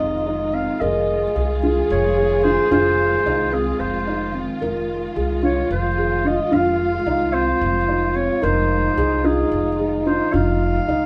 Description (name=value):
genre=contemporary instrumental, chamber music in an uneven meter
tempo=220 BPM (eighths)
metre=7/8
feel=straight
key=F minor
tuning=A4 = 440 Hz
part: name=warm clarinet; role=melody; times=0.0-11.1 s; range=Ab4 to F5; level=-25 LUFS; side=equal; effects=none
part: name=warm French horn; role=second line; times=0.0-11.1 s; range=Eb4 to Ab4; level=-25 LUFS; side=equal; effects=none
part: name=dark studio string section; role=sustained chords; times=0.0-11.1 s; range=Eb3 to F4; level=-32 LUFS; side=equal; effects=none
part: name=felt-muted upright piano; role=arpeggios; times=0.0-11.1 s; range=C4 to Bb4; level=-26 LUFS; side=equal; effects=none
part: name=upright bass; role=bass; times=0.0-11.1 s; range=F1 to C2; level=-27 LUFS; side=equal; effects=none
room=moderate small room reverb, RT60 0.5 s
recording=heard from further back in the room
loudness=-20 LUFS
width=mono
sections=0.0-11.1 A section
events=none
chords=0.0 Fm7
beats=0.27 0.54 | 0.81 1.08 1.35 1.62 1.90 2.17 2.44 | 2.71 2.99 3.26 3.53 3.80 4.07 4.35 | 4.62 4.89 5.16 5.43 5.71 5.98 6.25 | 6.52 6.80 7.07 7.34 7.61 7.88 8.16 | 8.43 8.70 8.97 9.25 9.52 9.79 10.06 | 10.34 10.61 10.88